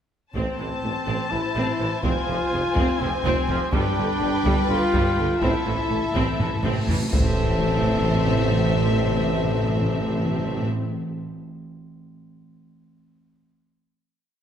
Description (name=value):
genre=cinematic, epic orchestral film score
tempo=247 BPM (eighths)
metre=7/8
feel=straight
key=A minor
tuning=A4 = 439 Hz
part: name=rich symphonic violin section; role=melody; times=0.3-10.7 s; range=E5 to A5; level=-31 LUFS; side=left 4 dB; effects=none
part: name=warm symphonic violin section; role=second line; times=0.3-10.7 s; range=A4 to C5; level=-32 LUFS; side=left 3 dB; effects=none
part: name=dark French horn section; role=sustained chords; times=0.3-10.7 s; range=C4 to A4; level=-29 LUFS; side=left 4 dB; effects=none
part: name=mellow trumpet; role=stabs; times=0.3-10.7 s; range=C4 to A4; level=-30 LUFS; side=right 1 dB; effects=none
part: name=rich studio double bass section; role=bass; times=0.3-10.7 s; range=F1 to A1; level=-30 LUFS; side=right 3 dB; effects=none
part: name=rich symphonic cello section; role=bass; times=0.3-10.6 s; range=F2 to A2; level=-30 LUFS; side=right 1 dB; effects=none
part: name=warm tuba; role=bass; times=0.3-10.7 s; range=F1 to A1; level=-30 LUFS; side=right 3 dB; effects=none
part: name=bright symphonic viola section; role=accompaniment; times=0.4-10.7 s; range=D3 to C4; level=-29 LUFS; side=equal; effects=none
part: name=taiko ensemble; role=drums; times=0.4-8.1 s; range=none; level=-27 LUFS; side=equal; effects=none
part: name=timpani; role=percussion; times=5.4-10.7 s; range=A2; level=-27 LUFS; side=left 1 dB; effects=none
part: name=cymbal swell and impact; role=sound effects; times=6.6-8.8 s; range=none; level=-36 LUFS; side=equal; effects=none
room=wet scoring stage reverb, RT60 1.7 s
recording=none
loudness=-20 LUFS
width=side -9 dB against mid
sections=0.3-7.1 theme; 7.1-10.5 final chord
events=timpani fill 5.4-7.1; drum fill 6.4-7.1; cymbal swell 6.6-7.1; impact 7.1-8.8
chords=0.3 Am; 2.0 Fm; 3.7 G; 5.4 Am